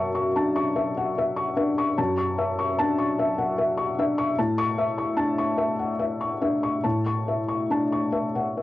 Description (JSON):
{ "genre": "neoclassical minimalist piano", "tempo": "46-50 BPM (dotted quarters)", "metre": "6/8", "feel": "rubato", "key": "A major", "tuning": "A4 = 441 Hz", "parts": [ { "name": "felt-muted upright piano", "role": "solo", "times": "0.0-8.6 s", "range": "F#2 to C#6", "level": "-22 LUFS", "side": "left 1 dB", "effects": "cassette tape" } ], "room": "wet booth ambience, RT60 0.2 s", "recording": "home recording on cassette", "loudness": "-22 LUFS", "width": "side -15 dB against mid", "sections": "0.0-8.6 A section", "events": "none", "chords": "0.0 F#m7; 4.4 A", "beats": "0.78 | 1.98 3.18 | 4.37 5.59 | 6.84 8.13" }